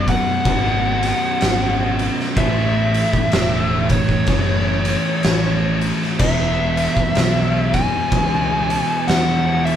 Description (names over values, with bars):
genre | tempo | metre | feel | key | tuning
stoner and doom metal | 63 BPM | 4/4 | swing 60% on 8ths | unclear | A4 = 440 Hz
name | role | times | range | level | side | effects
fuzz lead guitar | melody | 0.0-9.8 s | C#5 to G#5 | -22 LUFS | equal | distortion
distorted electric guitar | riff | 0.0-9.8 s | B1 to A3 | -26 LUFS | right 1 dB | distortion
thick fuzz guitar | riff | 0.0-9.8 s | B1 to A3 | -26 LUFS | left 5 dB | distortion
thick fuzz guitar | riff | 0.0-9.8 s | B1 to A3 | -26 LUFS | right 6 dB | distortion
overdriven picked electric bass | bass | 0.0-9.8 s | E1 to E2 | -23 LUFS | equal | none
oversized low-tuned drum kit | drums | 0.1-9.8 s | crash cymbal, kick drum, ride cymbal, snare drum | -20 LUFS | equal | none
room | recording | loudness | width
light reverb | band playing live in one room | -16 LUFS | side -9 dB against mid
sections
0.0-9.8 A section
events
none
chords
0.0 B5; 2.4 A; 6.2 E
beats
0.46 1.42 | 2.37 3.33 4.29 5.25 | 6.21 7.17 8.13 9.09